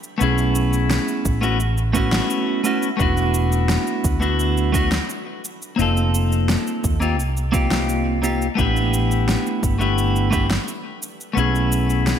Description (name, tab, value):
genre	sunset chillout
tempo	86 BPM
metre	4/4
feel	straight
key	unclear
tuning	A4 = 440 Hz
part	electronic shaker and snare drum	drums	0.0-12.2 s	none	-26 LUFS	equal	overdrive, gated reverb
part	clean electric guitar	accompaniment	0.2-12.2 s	A3 to A4	-21 LUFS	left 1 dB	auto-pan, ping-pong delay, shimmer reverb
part	mellow fretless electric bass	bass	0.2-12.1 s	E1 to Eb2	-21 LUFS	equal	wide subtle chorus
part	electronic kick drum	drums	1.3-10.5 s	none	-23 LUFS	equal	overdrive
room	moderate plate reverb, RT60 2.2 s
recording	bright 1980s-style digital production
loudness	-17 LUFS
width	side -9 dB against mid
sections	0.0-12.2 A section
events	none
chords	0.2 B9sus4; 3.0 E9sus4; 5.8 F9sus4; 8.6 A9sus4; 11.4 B9sus4